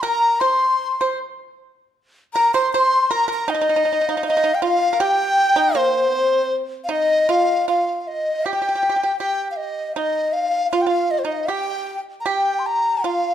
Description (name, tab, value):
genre	chinese traditional, Chinese chamber ensemble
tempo	78 BPM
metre	2/4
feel	straight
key	C yu mode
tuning	A4 = 440 Hz
part	breathy large dizi	melody	0.0-13.3 s	C5 to C6	-19 LUFS	equal	none
part	breathy low xiao	second line	0.0-13.3 s	C5 to C6	-24 LUFS	left 5 dB	none
part	pipa	second line	0.0-13.3 s	C4 to C5	-24 LUFS	right 6 dB	none
room	moderate recital hall reverb, RT60 1.4 s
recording	dark, warm production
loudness	-17 LUFS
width	side -10 dB against mid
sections	0.0-7.7 A section; 7.7-13.3 B section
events	none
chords	none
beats	| 0.03 0.80 | 1.57 2.34 | 3.10 3.86 | 4.62 5.38 | 6.13 6.90 | 7.68 8.45 | 9.21 9.97 | 10.73 11.49 | 12.27 13.05